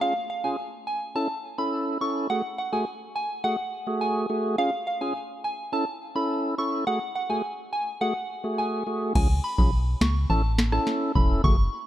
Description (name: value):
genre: dancehall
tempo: 105 BPM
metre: 4/4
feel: straight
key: F# minor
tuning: A4 = 440 Hz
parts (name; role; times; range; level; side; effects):
- soft synth bell; melody; 0.0-11.7 s; E#5 to C#6; -29 LUFS; equal; chorus
- tonewheel organ; accompaniment; 0.0-11.6 s; A3 to A4; -29 LUFS; right 1 dB; slow rotary speaker
- organ-like FM bass; bass; 9.2-11.7 s; E1 to C#2; -24 LUFS; equal; none
- booming analog drum machine; drums; 9.2-11.6 s; crash cymbal, finger snaps, kick drum, rim click, snare drum; -24 LUFS; equal; none
room: light reverb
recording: dark, warm production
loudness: -24 LUFS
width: side -13 dB against mid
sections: 0.0-9.2 A section; 9.2-11.9 B section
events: hi-hats muted 9.2-11.9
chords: 0.0 C#; 1.2 A; 2.3 F#madd9; 4.6 C#; 5.7 A; 6.9 F#madd9; 9.2 C#; 10.3 A